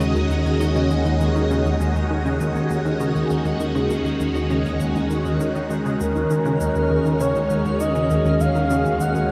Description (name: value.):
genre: ambient, sequencer-driven space music.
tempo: 100 BPM.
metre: 4/4.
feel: straight.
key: Eb minor.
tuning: A4 = 440 Hz.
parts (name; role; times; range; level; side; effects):
phased string machine; sustained chords; 0.0-9.3 s; Eb3 to Eb5; -25 LUFS; equal; ensemble chorus, phaser.
plucky analog bass; riff; 0.0-9.2 s; Eb2 to Eb3; -26 LUFS; equal; analog delay.
analog drone; bass; 0.0-9.3 s; Eb2; -28 LUFS; equal; chorus.
shaker and bongos; percussion; 0.0-9.3 s; none; -42 LUFS; equal; overdrive, analog delay.
twinkling granular texture; texture; 0.0-9.3 s; Eb5 to F6; -39 LUFS; equal; built-in reverb.
breathy flute-like synth lead; melody; 6.0-9.3 s; Bb4 to Gb5; -25 LUFS; equal; chorus, analog delay.
room: wet huge ambient reverb, RT60 7.6 s.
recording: dreamy mix soaked in reverb.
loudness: -21 LUFS.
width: mono.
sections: 0.0-9.3 A section.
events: none.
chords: 0.0 Ebm.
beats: 0.01 0.60 | 1.21 1.80 2.40 3.00 | 3.60 4.21 4.80 5.41 | 6.00 6.61 7.21 7.80 | 8.40 9.01.